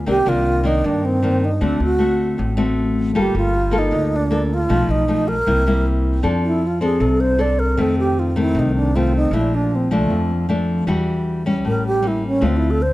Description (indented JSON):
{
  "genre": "bossa nova",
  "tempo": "156 BPM",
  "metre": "4/4",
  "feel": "straight",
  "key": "F major from 6.2 s",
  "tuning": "A4 = 436 Hz",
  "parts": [
    { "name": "nylon-string guitar", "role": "accompaniment", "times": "0.0-12.9 s", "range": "F2 to A4", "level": "-20 LUFS", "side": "left 2 dB", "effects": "none" },
    { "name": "upright bass", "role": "bass", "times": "0.0-12.9 s", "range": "G1 to G2", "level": "-22 LUFS", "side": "equal", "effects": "none" },
    { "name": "wooden-headed alto flute", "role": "melody", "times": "0.1-12.9 s", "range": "A3 to D5", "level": "-20 LUFS", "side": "right 2 dB", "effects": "none" }
  ],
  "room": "light reverb",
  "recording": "dark, warm production",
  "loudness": "-16 LUFS",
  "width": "side -17 dB against mid",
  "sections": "0.0-6.2 A section; 6.2-12.9 B section",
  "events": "alto flute solo 6.2-12.9",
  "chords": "0.1 Cm9; 1.6 D7; 3.1 Gm9; 4.7 B7#11; 5.5 C7; 6.2 F6; 7.8 F7; 9.3 Bbmaj7; 10.9 Em9; 11.6 A7b9; 12.4 Dm7"
}